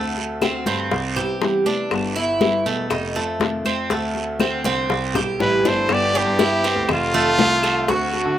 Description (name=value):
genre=latin, Cuban son and guajira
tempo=121 BPM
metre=4/4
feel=straight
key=G major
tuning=A4 = 439 Hz
part: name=nylon-string guitar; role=accompaniment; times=0.0-8.4 s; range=C3 to F#4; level=-29 LUFS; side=left 5 dB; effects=none
part: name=Cuban tres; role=arpeggios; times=0.0-8.4 s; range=A3 to G4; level=-23 LUFS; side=right 2 dB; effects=plate reverb
part: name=clear concert grand piano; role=bass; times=0.0-8.4 s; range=E1 to D3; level=-27 LUFS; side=right 2 dB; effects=none
part: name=bongos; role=percussion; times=0.2-8.4 s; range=none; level=-23 LUFS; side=left 7 dB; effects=none
part: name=congas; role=percussion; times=0.2-8.4 s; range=none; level=-27 LUFS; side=left 2 dB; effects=none
part: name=claves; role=percussion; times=0.4-7.9 s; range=none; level=-30 LUFS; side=left 1 dB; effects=none
part: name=guiro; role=percussion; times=0.4-8.4 s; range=none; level=-31 LUFS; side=right 6 dB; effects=none
part: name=brilliant trumpet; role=melody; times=5.4-8.4 s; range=F4 to D5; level=-20 LUFS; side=equal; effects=plate reverb
part: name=clear symphonic violin section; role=second line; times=5.4-8.4 s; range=A3 to G4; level=-30 LUFS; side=equal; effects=plate reverb
room=light reverb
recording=rough home demo mix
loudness=-18 LUFS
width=side -11 dB against mid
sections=0.0-5.9 A section; 5.9-8.4 B section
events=drum fill 5.1-5.9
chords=0.0 D7; 0.9 Cmaj7; 1.9 G6; 2.9 F7; 3.9 D7; 4.9 Cmaj7; 5.9 G6; 6.9 F7